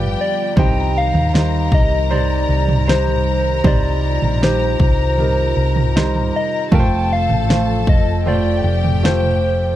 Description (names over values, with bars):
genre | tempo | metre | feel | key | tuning
pop ballad | 78 BPM | 4/4 | straight | unclear | A4 = 440 Hz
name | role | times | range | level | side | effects
soft struck synth lead | melody | 0.0-9.8 s | B4 to G5 | -21 LUFS | left 2 dB | chorus, tremolo, slapback echo
warm symphonic violin section | second line | 0.0-9.8 s | G4 to Bb5 | -26 LUFS | left 4 dB | none
clear grand piano | accompaniment | 0.0-9.8 s | C3 to D5 | -24 LUFS | right 4 dB | none
airy breathy pad | sustained chords | 0.0-9.8 s | C3 to A4 | -26 LUFS | right 1 dB | chorus
hollow-body short-scale fingered electric bass | bass | 0.0-9.8 s | F1 to Eb2 | -18 LUFS | equal | none
pop drum kit | drums | 0.6-9.4 s | kick drum, snare drum, toms | -18 LUFS | right 1 dB | none
room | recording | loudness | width
little or no reverb | dry, close 1970s-style studio recording | -14 LUFS | side -13 dB against mid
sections
0.0-9.8 A section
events
none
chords
0.0 G7; 0.6 Cm; 6.7 F